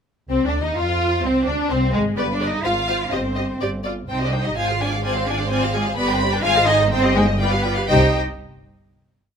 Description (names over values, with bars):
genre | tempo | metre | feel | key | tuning
quick classical-period movement for string orchestra | 126 BPM | 2/4 | straight | C minor | A4 = 439 Hz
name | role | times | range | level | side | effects
warm chamber violin section | melody | 0.3-8.2 s | Ab3 to B5 | -24 LUFS | left 1 dB | none
warm symphonic violin section | second line | 0.3-8.2 s | Ab4 to F5 | -25 LUFS | left 1 dB | none
rich symphonic viola section | accompaniment | 0.3-8.2 s | Ab3 to Eb5 | -25 LUFS | left 1 dB | none
rich symphonic cello section | bass | 0.3-8.2 s | Ab3 to F4 | -24 LUFS | right 1 dB | none
warm symphonic double bass section | bass | 0.3-8.2 s | G1 to F2 | -24 LUFS | right 1 dB | none
room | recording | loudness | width
light reverb | minimal, uncompressed stereo recording | -18 LUFS | side -7 dB against mid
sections
0.3-7.9 variation; 7.9-8.9 final chord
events
none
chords
0.3 Cm; 0.8 N.C.; 1.2 Ab; 2.2 G; 2.6 Fm/Ab; 3.1 C5/G; 3.6 G5; 4.1 Cm; 4.6 Dm7b5/Ab; 6.0 G; 6.4 Ab; 6.9 Cm/G; 7.4 G7; 7.9 Cm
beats
| 0.29 0.77 | 1.23 1.70 | 2.17 2.64 | 3.12 3.61 | 4.09 4.57 | 5.04 5.51 | 5.98 6.45 | 6.92 7.40 | 7.90